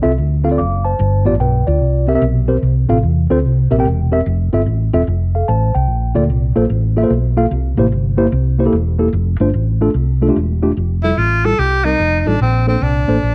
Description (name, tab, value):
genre	uptempo gospel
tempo	147 BPM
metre	4/4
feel	swing 66% on 8ths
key	F major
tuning	A4 = 436 Hz
part	mellow tine electric piano	accompaniment	0.0-13.2 s	G2 to D6	-19 LUFS	equal	none
part	hollow-body short-scale fingered electric bass	bass	0.0-13.3 s	E1 to E2	-18 LUFS	equal	none
part	breathy tenor saxophone	melody	11.0-13.3 s	C4 to A4	-19 LUFS	equal	none
room	light reverb, small room reverb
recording	none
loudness	-15 LUFS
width	mono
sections	0.0-10.8 A section; 10.8-13.3 B section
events	none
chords	0.0 Dm7; 1.0 G7; 1.8 C7; 2.6 F; 3.4 C7; 4.3 Fmaj7; 5.1 F; 5.9 Bbmaj7(no3); 7.5 C7; 9.1 F6; 10.8 Fmaj9; 11.6 Cm7; 12.0 F9; 12.4 Bbmaj9